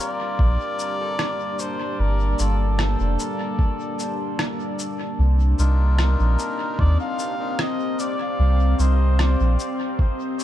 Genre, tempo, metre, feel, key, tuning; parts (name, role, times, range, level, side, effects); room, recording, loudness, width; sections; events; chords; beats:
ambient dub; 75 BPM; 4/4; straight; G minor; A4 = 441 Hz
trumpet with cup mute; melody; 0.0-10.4 s; A4 to F5; -29 LUFS; equal; dub echo
deep dark ambient pad; sustained chords; 0.0-10.4 s; G3 to A5; -28 LUFS; left 1 dB; chorus, built-in reverb
melodica; stabs; 0.0-9.0 s; Bb3 to Bb4; -33 LUFS; left 4 dB; dub echo
soft dub sub bass; bass; 0.4-9.6 s; F1 to Eb2; -18 LUFS; equal
electronic kick drum; drums; 0.4-10.2 s; -20 LUFS; equal; overdrive
electronic shaker and rim click; drums; 0.8-10.4 s; -29 LUFS; equal; overdrive, dub echo
little or no reverb; dark, warm production; -19 LUFS; side -12 dB against mid
0.0-10.4 A section
0.0 Gm9; 5.2 Cm11
0.39 1.19 | 1.99 2.79 3.59 4.39 | 5.19 5.99 6.79 7.59 | 8.39 9.19 9.99